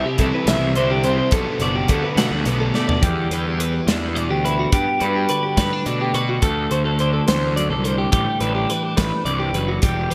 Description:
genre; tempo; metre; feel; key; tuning
math rock and midwest emo; 70 BPM (dotted quarters); 6/8; straight; G major; A4 = 439 Hz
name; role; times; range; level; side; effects
twelve-string electric guitar; accompaniment; 0.0-10.1 s; D2 to G4; -28 LUFS; equal; analog chorus
clean electric guitar; arpeggios; 0.0-10.1 s; F#4 to F#5; -25 LUFS; equal; lush chorus
overdriven semi-hollow guitar; riff; 0.0-3.0 s; B2 to E4; -27 LUFS; equal; subtle chorus
fuzz picked electric bass; bass; 0.0-10.1 s; E1 to B2; -26 LUFS; equal; overdrive
modern studio drum kit; drums; 0.2-10.1 s; hi-hat, kick drum, snare drum, toms; -24 LUFS; equal; gated reverb
room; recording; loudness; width
moderate lush hall reverb, RT60 1.9 s, small room ambience; bright 1980s-style digital production; -20 LUFS; mono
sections
0.0-3.0 A section; 3.0-10.1 B section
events
drum fill 2.7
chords
0.0 Cmaj7; 1.3 Gmaj9; 3.0 Em7; 4.7 Gmaj7; 6.4 D7; 8.1 Am11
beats
0.48 | 1.33 2.18 | 3.03 3.88 | 4.73 5.58 | 6.43 7.28 | 8.13 8.98 | 9.83

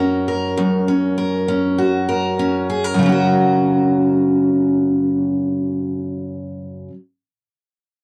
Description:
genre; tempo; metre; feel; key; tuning
pop; 100 BPM; 4/4; straight; F# major; A4 = 444 Hz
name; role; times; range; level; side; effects
picked steel-string acoustic guitar; solo; 0.0-7.0 s; F#2 to A#4; -18 LUFS; equal; none
room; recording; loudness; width
light reverb; dry, close 1970s-style studio recording, lossy compression artefacts; -18 LUFS; mono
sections
0.0-3.0 A section; 3.0-5.4 B section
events
none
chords
0.0 F#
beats
| 0.57 1.18 1.78 2.38 | 2.98 3.59 4.19 4.79

